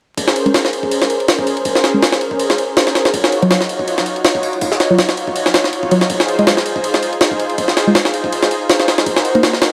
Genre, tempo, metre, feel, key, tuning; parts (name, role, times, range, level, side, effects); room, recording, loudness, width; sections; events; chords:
drum and bass, jungle; 162 BPM; 4/4; swing 55% on 16ths; Bb minor; A4 = 440 Hz
lush unison pad; sustained chords; 0.2-9.7 s; Db4 to Db5; -20 LUFS; equal; chorus
jungle sampler-style drum kit; drums; 0.2-9.7 s; kick drum, ride cymbal, snare drum; -18 LUFS; equal; high-pass filter on kick, studio reverb, high-pass filter on cymbals, high-pass filter on snare
deep mellow chord stab; stabs; 0.5-9.5 s; Gb3 to Eb5; -19 LUFS; equal; chorus, cassette tape, dub echo
light reverb, digital ambience; vinyl crackle; -15 LUFS; mono
0.2-9.7 A section
filter sweep on synth stab 0.2-9.7
0.2 Bbm9; 3.1 Ebm9; 6.1 Fm7; 9.1 Cm7b5